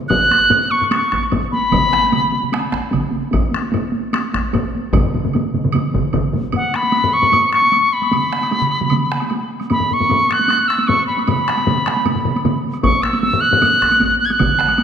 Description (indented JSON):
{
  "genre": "japanese traditional, taiko drum ensemble",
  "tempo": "151 BPM",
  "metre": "4/4",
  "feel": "straight",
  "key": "unclear",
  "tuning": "A4 = 441 Hz",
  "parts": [
    { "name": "bright reedy wooden piccolo", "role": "melody", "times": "0.1-2.7, 6.6-14.8 s", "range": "F#5 to G#6", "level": "-15 LUFS", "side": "equal", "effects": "none" },
    { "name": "solo taiko drums", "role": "percussion", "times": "0.1-13.9 s", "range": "none", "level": "-23 LUFS", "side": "left 6 dB", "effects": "none" },
    { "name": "taiko ensemble", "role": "percussion", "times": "0.1-14.8 s", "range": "none", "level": "-22 LUFS", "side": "right 2 dB", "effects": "none" },
    { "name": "taiko ensemble", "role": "percussion", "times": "0.1-6.2, 12.8-14.5 s", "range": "none", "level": "-22 LUFS", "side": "equal", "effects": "none" },
    { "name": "woodblock", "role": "percussion", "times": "0.1-14.8 s", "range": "none", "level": "-31 LUFS", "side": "right 4 dB", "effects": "none" },
    { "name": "taiko ensemble", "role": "percussion", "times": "1.7-14.7 s", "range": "none", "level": "-22 LUFS", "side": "right 4 dB", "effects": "none" }
  ],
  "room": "wet scoring stage reverb, RT60 1.9 s",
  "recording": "none",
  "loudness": "-14 LUFS",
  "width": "side -8 dB against mid",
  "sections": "0.0-6.5 A section; 6.5-14.8 B section",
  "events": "speeding up 0.0-14.8",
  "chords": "none",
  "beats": "| 0.09 0.50 0.90 1.31 | 1.72 2.12 2.52 2.93 | 3.33 3.73 4.14 4.54 | 4.94 5.34 5.74 6.14 | 6.54 6.94 7.33 7.73 | 8.13 8.52 8.92 9.31 | 9.71 10.10 10.49 10.88 | 11.28 11.67 12.06 12.45 | 12.84 13.23 13.62 14.00 | 14.39 14.78"
}